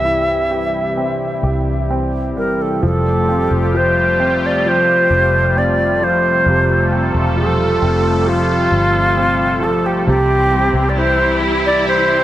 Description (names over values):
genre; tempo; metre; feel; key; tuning
pop ballad; 66 BPM; 4/4; straight; F major; A4 = 440 Hz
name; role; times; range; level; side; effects
bright reedy alto flute; melody; 0.0-12.2 s; F4 to E5; -16 LUFS; equal; none
warm grand piano; accompaniment; 0.0-12.2 s; G2 to G4; -21 LUFS; right 1 dB; none
sweeping resonant pad; sustained chords; 0.0-12.2 s; C3 to A4; -21 LUFS; left 1 dB; chorus
vintage muted fingered electric bass; bass; 0.0-12.2 s; E1 to C2; -20 LUFS; equal; none
rich symphonic cello section; second line; 10.1-12.2 s; C4 to E4; -20 LUFS; left 1 dB; tape echo
room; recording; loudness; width
light reverb, small room ambience; none; -13 LUFS; side -13 dB against mid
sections
0.0-2.8 A section; 2.8-12.2 B section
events
none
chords
0.0 C; 2.8 Fadd9; 10.1 C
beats
0.04 0.96 1.90 | 2.83 3.74 4.65 5.56 | 6.47 7.37 8.27 9.17 | 10.07 10.96 11.86